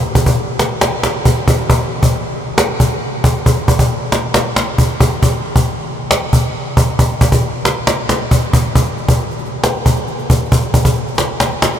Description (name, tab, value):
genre	hip hop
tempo	136 BPM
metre	4/4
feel	half-time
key	none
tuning	none
part	cajon	drums	0.2-11.8 s	none	-12 LUFS	equal	none
room	wet huge ambient reverb, RT60 7.5 s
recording	dreamy mix soaked in reverb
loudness	-12 LUFS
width	side -10 dB against mid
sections	0.0-11.8 A section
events	break 0.0-1.7; hi-hats muted 1.7-8.8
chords	none